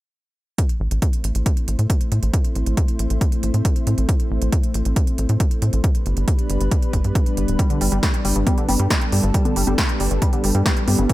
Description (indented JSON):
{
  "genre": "uplifting trance",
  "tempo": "137 BPM",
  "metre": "4/4",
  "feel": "straight",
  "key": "A minor",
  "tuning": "A4 = 440 Hz",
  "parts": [
    { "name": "lush unison pad", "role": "sustained chords", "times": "0.6-11.1 s", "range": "G3 to C5", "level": "-26 LUFS", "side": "equal", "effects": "chorus, sidechain pumping" },
    { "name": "big-room dance drum kit", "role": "drums", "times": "0.6-11.1 s", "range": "congas, hi-hat, snare drum", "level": "-25 LUFS", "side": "equal", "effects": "sidechain pumping on hats, sidechain pumping on perc" },
    { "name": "electronic kick drum", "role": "drums", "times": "0.6-11.1 s", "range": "none", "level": "-19 LUFS", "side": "equal", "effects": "none" },
    { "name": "tight sequencer bass", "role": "bass", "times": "0.8-11.1 s", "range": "D1 to A2", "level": "-20 LUFS", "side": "equal", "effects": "sidechain pumping" },
    { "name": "tight sequenced synth", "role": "arpeggios", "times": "7.6-11.1 s", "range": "G2 to G3", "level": "-26 LUFS", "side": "left 1 dB", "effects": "chorus, sidechain pumping, digital delay" }
  ],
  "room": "little or no reverb",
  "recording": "none",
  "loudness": "-17 LUFS",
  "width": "side -17 dB against mid",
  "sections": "0.6-11.1 A section",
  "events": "none",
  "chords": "0.6 Am; 5.8 G",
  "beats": "| 0.58 1.02 1.46 1.90 | 2.34 2.77 3.21 3.65 | 4.09 4.53 4.96 5.40 | 5.84 6.28 6.71 7.15 | 7.59 8.03 8.47 8.90 | 9.34 9.78 10.22 10.66 | 11.10"
}